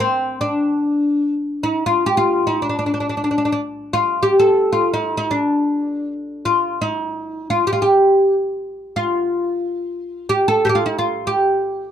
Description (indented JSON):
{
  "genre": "Arabic maqam ensemble",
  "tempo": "free time",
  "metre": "none",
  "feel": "none",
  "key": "unclear",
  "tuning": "A4 = 438 Hz",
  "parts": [
    { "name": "oud", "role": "solo", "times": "0.0-11.9 s", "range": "C4 to A4", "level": "-16 LUFS", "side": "equal", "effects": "none" }
  ],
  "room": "moderate small room reverb, RT60 0.5 s",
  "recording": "dark, warm production, faint mains hum",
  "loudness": "-16 LUFS",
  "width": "side -9 dB against mid",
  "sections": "0.0-11.9 A section",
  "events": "none",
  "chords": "none",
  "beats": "free time"
}